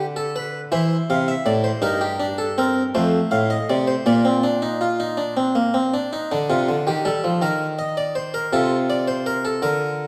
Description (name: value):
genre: classical, baroque-style 3-part fugue for harpsichord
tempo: 54 BPM (dotted quarters)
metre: 6/8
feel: straight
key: unclear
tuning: A4 = 440 Hz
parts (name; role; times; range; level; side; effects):
- harpsichord; solo; 0.0-10.1 s; F2 to F5; -21 LUFS; equal; none
room: wet recital hall reverb, RT60 1.7 s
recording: vinyl crackle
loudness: -21 LUFS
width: mono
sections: 0.0-6.3 A section; 6.3-10.1 B section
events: none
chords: 0.0 G/D (rootless); 0.7 C; 1.8 Cm7/G; 3.0 F7; 4.1 Bb; 6.3 Cm69; 7.4 Eb5; 8.5 F/C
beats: 0.74 | 1.84 2.96 | 4.07 5.20 | 6.32 7.43 | 8.52 9.63